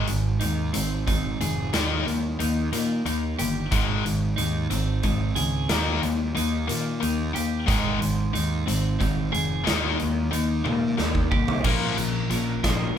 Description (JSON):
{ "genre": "quiet-loud alternative rock", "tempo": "60 BPM (dotted quarters)", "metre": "6/8", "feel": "straight", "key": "unclear", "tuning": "A4 = 440 Hz", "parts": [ { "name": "clean electric guitar", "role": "arpeggios", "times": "0.0-13.0 s", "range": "Ab2 to Bb4", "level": "-29 LUFS", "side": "right 5 dB", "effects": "none" }, { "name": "overdriven electric guitar", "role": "riff", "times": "0.0-12.9 s", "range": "Ab2 to Eb4", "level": "-26 LUFS", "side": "left 5 dB", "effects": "none" }, { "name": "fuzz picked electric bass", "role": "bass", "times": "0.0-12.9 s", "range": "F1 to Bb2", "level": "-29 LUFS", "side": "right 1 dB", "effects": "overdrive" }, { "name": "big rock drum kit", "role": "drums", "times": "0.1-12.8 s", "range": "crash cymbal, hi-hat, kick drum, snare drum, toms", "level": "-28 LUFS", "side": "right 1 dB", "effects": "none" } ], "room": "light reverb", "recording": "band playing live in one room", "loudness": "-22 LUFS", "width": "side -9 dB against mid", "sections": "0.0-11.6 A section; 11.6-13.0 B section", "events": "half time 0.0-11.6; drum fill 10.7-11.6", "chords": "0.0 Ab; 1.7 Eb; 3.7 Ab; 5.7 Eb; 7.7 Ab; 9.7 Eb; 11.6 Bbm", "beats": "0.74 | 1.73 2.72 | 3.72 4.71 | 5.70 6.69 | 7.68 8.67 | 9.66 10.66 | 11.65 12.64" }